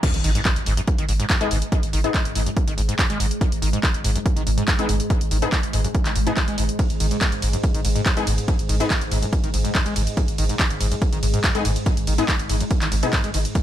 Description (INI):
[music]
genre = driving peak-time techno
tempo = 142 BPM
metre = 4/4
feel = straight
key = unclear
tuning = A4 = 440 Hz
[part]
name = screaming distorted acid line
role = riff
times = 0.0-13.6 s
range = F#2 to G#3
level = -28 LUFS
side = equal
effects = distortion, lush chorus, sidechain pumping, digital delay
[part]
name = deep dark ambient pad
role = drone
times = 1.2-13.6 s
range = G#2 to G#3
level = -30 LUFS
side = right 1 dB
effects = chorus, built-in reverb, sidechain pumping
[part]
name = electronic kick drum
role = drums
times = 0.0-13.6 s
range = none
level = -23 LUFS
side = equal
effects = none
[part]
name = techno drum kit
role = drums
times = 0.0-13.6 s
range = crash cymbal, handclaps, hi-hat, ride cymbal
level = -26 LUFS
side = equal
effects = sidechain pumping on hats, sidechain pumping on cymbals
[part]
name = impact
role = sound effects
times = 0.0-1.7 s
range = none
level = -31 LUFS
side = equal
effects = none
[part]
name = saturated sub bass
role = bass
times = 0.1-13.4 s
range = G#1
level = -24 LUFS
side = equal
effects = overdrive, sidechain pumping, low-pass filter
[part]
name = rave stab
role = stabs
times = 1.4-2.1, 4.8-8.9, 11.5-13.1 s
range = B3 to G#4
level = -27 LUFS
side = left 4 dB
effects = chorus, built-in reverb, sidechain pumping, digital delay
[sound]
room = digital ambience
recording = none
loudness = -19 LUFS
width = side -12 dB against mid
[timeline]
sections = 0.0-13.6 A section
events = drop 0.0-13.6; impact 0.0-1.7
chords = 0.0 G#5